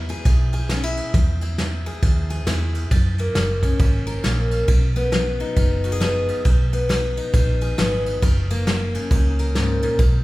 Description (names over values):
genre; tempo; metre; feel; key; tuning
honky-tonk and classic country; 136 BPM; 4/4; swing 62% on 8ths; B major; A4 = 440 Hz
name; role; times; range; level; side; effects
picked steel-string acoustic guitar; accompaniment; 0.0-10.2 s; F#2 to A#4; -24 LUFS; left 2 dB; none
vintage muted fingered electric bass; bass; 0.0-10.2 s; F#1 to F#2; -22 LUFS; equal; none
vintage brush drum kit; drums; 0.1-10.1 s; kick drum, ride cymbal, snare drum; -21 LUFS; equal; none
room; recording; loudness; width
moderate recital hall reverb, RT60 1.7 s; recorded in a church or concert hall; -18 LUFS; side -18 dB against mid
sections
0.0-10.2 A section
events
none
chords
0.0 E; 2.9 F#; 4.7 B; 8.2 F#